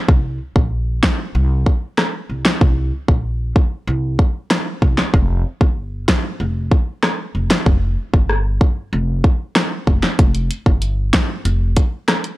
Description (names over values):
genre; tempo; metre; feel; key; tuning
dancehall; 95 BPM; 4/4; straight; unclear; A4 = 440 Hz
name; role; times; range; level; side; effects
upright bass; bass; 0.1-11.7 s; F1 to C2; -19 LUFS; equal; transformer saturation
pop drum kit; drums; 0.1-12.4 s; hi-hat, kick drum, rim click, snare drum; -14 LUFS; equal; none
room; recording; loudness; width
little or no reverb; dry, gritty hardware recording; -15 LUFS; side -18 dB against mid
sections
0.0-10.2 A section; 10.2-12.4 B section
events
none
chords
none